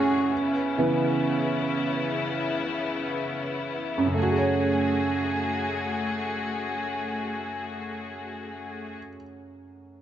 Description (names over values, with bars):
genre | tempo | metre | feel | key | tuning
pop | free time | none | none | F# minor | A4 = 440 Hz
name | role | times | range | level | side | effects
clear upright piano | accompaniment | 0.0-10.0 s | F#2 to C#5 | -27 LUFS | right 2 dB | none
rich studio string section | sustained chords | 0.0-9.0 s | C#3 to G#4 | -29 LUFS | left 3 dB | none
room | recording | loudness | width
light reverb, studio reverb | nothing above 7.9 kHz | -24 LUFS | side -10 dB against mid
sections
0.0-4.2 A section; 4.2-8.2 B section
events
slowing down 0.0-4.2; upright piano solo 0.0-4.2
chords
0.3 C#m7; 4.2 F#madd9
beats
free time